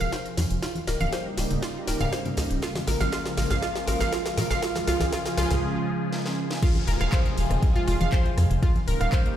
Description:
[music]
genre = progressive house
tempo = 120 BPM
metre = 4/4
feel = straight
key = F minor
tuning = A4 = 438 Hz
[part]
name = lush unison pad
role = sustained chords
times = 0.0-9.4 s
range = C3 to Ab4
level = -30 LUFS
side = equal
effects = chorus, phaser, sidechain pumping
[part]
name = analog pluck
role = arpeggios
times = 0.0-9.2 s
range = F4 to F5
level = -30 LUFS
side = right 2 dB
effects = chorus, sidechain pumping, digital delay
[part]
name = tight sequencer bass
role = bass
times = 0.0-9.1 s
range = Eb1 to Bb2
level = -25 LUFS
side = equal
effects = sidechain pumping
[part]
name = house drum kit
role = drums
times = 0.0-9.4 s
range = crash cymbal, handclaps, hi-hat, ride cymbal, rim click, snare drum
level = -32 LUFS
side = equal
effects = high-pass filter on snare, studio reverb, high-pass filter on hats, high-pass filter on cymbals
[part]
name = tambourine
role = percussion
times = 0.0-5.6 s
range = none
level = -42 LUFS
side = left 4 dB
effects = none
[part]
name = electronic kick drum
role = drums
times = 0.1-9.2 s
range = none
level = -23 LUFS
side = equal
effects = high-pass filter on kick, studio reverb
[part]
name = congas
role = percussion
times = 0.4-8.8 s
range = none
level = -33 LUFS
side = left 1 dB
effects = sidechain pumping on perc
[part]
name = downlifter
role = sound effects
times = 6.6-9.4 s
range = none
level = -38 LUFS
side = right 1 dB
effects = none
[sound]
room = light reverb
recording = played on a big sound system in a bare room, stone room reverb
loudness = -23 LUFS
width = side -11 dB against mid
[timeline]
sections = 0.0-6.6 A section; 6.6-9.4 B section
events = build-up 0.0-6.6; drum fill 0.0-5.6, 6.1-6.6; filter sweep on analog synth pad 0.0-6.6; break 5.6-6.6; drop 6.6-9.4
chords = 0.0 Fm; 0.6 Eb7; 2.6 Bbm7; 4.6 Db; 6.6 Fm; 8.6 Eb7

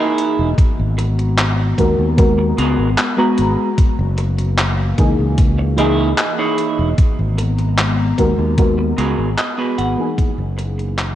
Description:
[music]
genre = vaporwave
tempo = 75 BPM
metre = 4/4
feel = straight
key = G# minor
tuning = A4 = 441 Hz
[part]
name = mellow FM electric piano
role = accompaniment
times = 0.0-11.2 s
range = E3 to A#5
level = -20 LUFS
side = left 1 dB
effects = ensemble chorus, analog delay
[part]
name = warbly tape-like pad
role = sustained chords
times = 0.0-11.2 s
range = E3 to A#5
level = -25 LUFS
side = left 3 dB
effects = chorus, built-in reverb
[part]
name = semi-hollow electric guitar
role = riff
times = 0.0-11.0 s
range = B3 to F#5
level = -21 LUFS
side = right 3 dB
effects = lush chorus, vintage 12-bit sampler grit, analog delay
[part]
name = detuned 8-bit digital drum machine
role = drums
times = 0.2-11.1 s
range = handclaps, hi-hat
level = -21 LUFS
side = equal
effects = none
[part]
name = fingered electric bass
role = bass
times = 0.4-11.2 s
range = E1 to D#2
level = -18 LUFS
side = equal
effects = none
[part]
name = electronic kick drum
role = drums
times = 0.6-10.3 s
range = none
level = -15 LUFS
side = equal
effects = none
[sound]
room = light reverb, digital ambience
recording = cassette tape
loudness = -14 LUFS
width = side -12 dB against mid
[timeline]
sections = 0.0-11.2 A section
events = fade-out 8.1-11.2; clean electric guitar fill 9.0-10.2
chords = 0.0 F#13; 0.6 G#m9; 3.8 F#13; 7.0 G#m9; 10.2 F#13

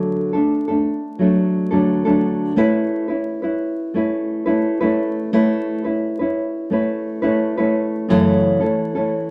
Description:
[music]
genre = pop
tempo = 87 BPM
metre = 4/4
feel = straight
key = A major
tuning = A4 = 440 Hz
[part]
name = nylon-string guitar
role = solo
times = 0.0-9.3 s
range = F#2 to B4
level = -19 LUFS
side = equal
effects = none
[sound]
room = moderate studio reverb, RT60 0.6 s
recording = vinyl crackle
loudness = -19 LUFS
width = mono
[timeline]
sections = 0.0-9.3 A section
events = none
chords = 0.0 D; 2.6 Aadd9; 8.1 F#m7

